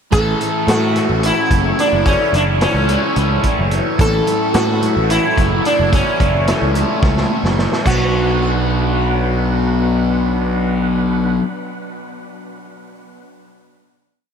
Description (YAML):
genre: psychedelic rock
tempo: 218 BPM (eighths)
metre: 7/8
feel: straight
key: unclear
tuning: A4 = 438 Hz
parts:
  - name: sitar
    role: melody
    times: 0.1-11.4 s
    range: C#4 to A4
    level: -19 LUFS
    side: right 1 dB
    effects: tape echo
  - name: bright tonewheel organ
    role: sustained chords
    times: 0.1-11.4 s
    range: D4 to C#6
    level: -28 LUFS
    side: right 4 dB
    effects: slow rotary speaker, chorus vibrato
  - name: fuzz guitar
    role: riff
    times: 0.1-11.4 s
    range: A2 to B3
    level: -20 LUFS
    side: left 3 dB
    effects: distortion, phaser
  - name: fuzz picked electric bass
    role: bass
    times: 0.1-11.4 s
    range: F#1 to A2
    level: -18 LUFS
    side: equal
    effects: overdrive
  - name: vintage drum kit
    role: drums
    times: 0.1-8.0 s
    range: crash cymbal, hi-hat, kick drum, snare drum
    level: -21 LUFS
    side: equal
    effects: none
  - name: congas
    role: percussion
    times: 4.0-8.1 s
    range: none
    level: -30 LUFS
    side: right 13 dB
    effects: none
room: moderate huge ambient reverb, RT60 8.8 s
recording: dreamy mix soaked in reverb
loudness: -13 LUFS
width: side -7 dB against mid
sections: 0.1-7.9 pre-chorus; 7.9-11.7 final chord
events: drum fill 7.0-7.9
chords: 0.1 A; 7.9 Bm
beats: | 0.13 0.41 0.68 0.96 1.23 1.51 1.78 | 2.06 2.33 2.61 2.89 3.16 3.44 3.72 | 3.99 4.27 4.54 4.82 5.10 5.38 5.65 | 5.93 6.20 6.48 6.76 7.03 7.31 7.58 | 7.86 8.14 8.41 8.69 8.96 9.24 9.51 | 9.79 10.06 10.33 10.61 10.88 11.15 11.43